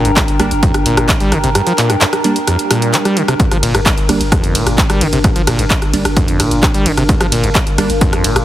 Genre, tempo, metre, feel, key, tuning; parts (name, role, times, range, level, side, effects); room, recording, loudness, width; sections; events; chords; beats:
driving peak-time techno; 130 BPM; 4/4; straight; G minor; A4 = 440 Hz
acid bass, saw; riff; 0.0-8.4 s; F2 to G3; -18 LUFS; equal; sidechain pumping
saturated sub bass; bass; 0.0-8.4 s; G1; -20 LUFS; equal; sidechain pumping, low-pass filter
warbly tape-like pad; texture; 0.0-8.4 s; D4 to C6; -19 LUFS; equal; chorus, built-in reverb, sidechain pumping
techno drum kit; drums; 0.1-8.4 s; handclaps, hi-hat, ride cymbal, rim click; -17 LUFS; equal
electronic kick drum; drums; 0.2-8.1 s; -15 LUFS; equal
wavetable chord stab; stabs; 0.4-7.9 s; G3 to D4; -19 LUFS; right 3 dB; vintage 12-bit sampler grit, sidechain pumping, dub echo
swell; sound effects; 2.6-3.4 s; -24 LUFS; right 3 dB
little or no reverb; heavily compressed radio sound; -11 LUFS; side -13 dB against mid
0.0-8.4 A section
swell 2.6-3.4
0.0 Gm
0.17 0.63 1.09 | 1.55 2.01 2.47 2.94 | 3.40 3.86 4.32 4.78 | 5.24 5.70 6.17 6.63 | 7.09 7.55 8.01